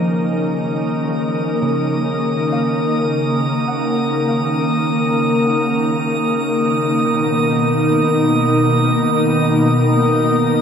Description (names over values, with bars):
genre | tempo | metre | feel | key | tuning
ambient | free time | none | none | Eb minor | A4 = 438 Hz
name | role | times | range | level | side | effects
soft additive organ-like pad | sustained chords | 0.0-10.6 s | B2 to Bb4 | -16 LUFS | equal | ensemble chorus, built-in reverb, shimmer reverb
concert harp | arpeggios | 0.0-6.9 s | Db3 to Gb5 | -26 LUFS | equal | dub echo, shimmer reverb
drifting glass-harmonics texture | texture | 0.0-10.6 s | Eb6 | -23 LUFS | right 3 dB | chorus, built-in reverb, shimmer reverb
room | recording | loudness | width
wet plate reverb, RT60 2.9 s | echo-heavy mix | -15 LUFS | side -7 dB against mid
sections
0.0-10.6 A section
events
fade-in on ambient pad 0.0-10.6; fade-in on harp 0.0-10.6; fade-in on synth texture 0.0-10.6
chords
0.0 Ebm7; 6.9 Bmaj7